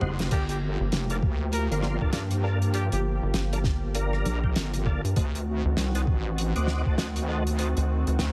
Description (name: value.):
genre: glitch hop.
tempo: 99 BPM.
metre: 4/4.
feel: swing 60% on 16ths.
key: G minor.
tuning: A4 = 438 Hz.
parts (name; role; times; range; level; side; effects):
warm analog pad; sustained chords; 0.0-8.3 s; Eb3 to G4; -37 LUFS; equal; chorus, vintage 12-bit sampler grit, sidechain pumping.
tonewheel organ; stabs; 0.0-7.7 s; Bb3 to D5; -38 LUFS; equal; chorus vibrato, slow rotary speaker, sidechain pumping, tape echo.
wobble bass; bass; 0.0-8.3 s; F1 to G2; -30 LUFS; equal; chorus.
damped 70s drum kit; drums; 0.0-8.3 s; crash cymbal, hi-hat, rim click, snare drum, toms; -35 LUFS; equal; none.
clear trumpet; melody; 0.3-3.0 s; G4 to Bb4; -38 LUFS; equal; tape echo.
electronic kick drum; drums; 0.3-7.0 s; none; -28 LUFS; equal; none.
rubbery square bass; bass; 0.8-8.2 s; G1 to G2; -28 LUFS; equal; none.
room: light reverb, studio reverb.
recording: heavily compressed radio sound.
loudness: -27 LUFS.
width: mono.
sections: 0.0-8.3 A section.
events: break 0.0-0.3; drum fill 0.0-0.3.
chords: 0.3 Gm7; 5.2 D7b9.